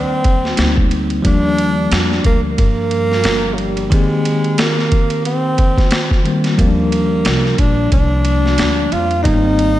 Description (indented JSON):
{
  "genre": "hip hop, jazz-hop",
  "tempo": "90 BPM",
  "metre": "4/4",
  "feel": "swing 57% on 16ths",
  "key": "Eb major",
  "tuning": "A4 = 436 Hz",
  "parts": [
    { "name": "breathy tenor saxophone", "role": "melody", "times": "0.0-9.8 s", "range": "Gb3 to F4", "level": "-19 LUFS", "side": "right 1 dB", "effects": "analog delay" },
    { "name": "bell-like tine electric piano", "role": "accompaniment", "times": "0.0-9.8 s", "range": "Eb3 to G4", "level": "-18 LUFS", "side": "left 1 dB", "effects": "fast stereo tremolo" },
    { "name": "upright bass", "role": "bass", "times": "0.0-9.8 s", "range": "G1 to G2", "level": "-19 LUFS", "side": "equal", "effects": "none" },
    { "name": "boom bap sampler-style drum kit", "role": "drums", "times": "0.2-9.8 s", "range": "hi-hat, kick drum, ride cymbal, snare drum", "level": "-17 LUFS", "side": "equal", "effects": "vintage 12-bit sampler grit" }
  ],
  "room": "light reverb, digital ambience",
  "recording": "none",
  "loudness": "-12 LUFS",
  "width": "side -14 dB against mid",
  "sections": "0.0-9.8 A section",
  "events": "none",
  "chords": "0.0 Abmaj9 (rootless); 1.3 Ebmaj9; 3.9 Abmaj9; 6.6 Ebmaj9; 9.3 Abmaj9",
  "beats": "0.59 | 1.25 1.92 2.59 3.25 | 3.92 4.59 5.25 5.92 | 6.59 7.25 7.92 8.59 | 9.25"
}